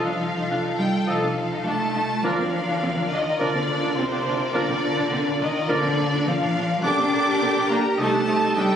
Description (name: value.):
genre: quick classical-period movement for symphony orchestra.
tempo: 104 BPM.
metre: 4/4.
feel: straight.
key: Bb major.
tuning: A4 = 438 Hz.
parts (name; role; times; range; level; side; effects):
rich chamber violin section; melody; 0.0-8.8 s; C5 to D6; -28 LUFS; left 1 dB; none.
clear oboe; second line; 0.0-8.7 s; D5 to Eb5; -32 LUFS; right 2 dB; none.
hollow large flute ensemble; second line; 0.0-8.8 s; C5 to D6; -31 LUFS; left 2 dB; none.
mellow clarinet; second line; 0.0-8.7 s; G4 to Bb4; -34 LUFS; equal; none.
rich chamber violin section; second line; 0.0-8.8 s; A4 to A5; -32 LUFS; left 4 dB; none.
mellow bassoon; accompaniment; 0.0-8.7 s; C3 to F3; -34 LUFS; right 2 dB; none.
rich chamber viola section; accompaniment; 0.0-8.8 s; C4 to G4; -28 LUFS; right 2 dB; none.
mellow French horn section; sustained chords; 0.0-8.8 s; D4 to G4; -30 LUFS; left 2 dB; none.
warm trumpet; stabs; 0.0-8.8 s; A4 to Bb4; -31 LUFS; right 2 dB; none.
warm chamber cello section; bass; 0.0-8.8 s; C3 to D4; -25 LUFS; equal; none.
warm chamber double bass section; bass; 0.0-8.8 s; Bb1 to D2; -35 LUFS; right 1 dB; none.
timpani; percussion; 2.2-3.1 s; none; barely audible; none; none.
room: wet recital hall reverb, RT60 1.4 s.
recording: recorded on a phone in the room, studio ambience, compression.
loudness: -20 LUFS.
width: side -8 dB against mid.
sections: 0.0-8.8 A section.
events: none.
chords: 0.0 F7/C; 2.2 Bb/D; 4.5 Bb; 6.8 Gm/Bb; 8.0 Am7b5/C.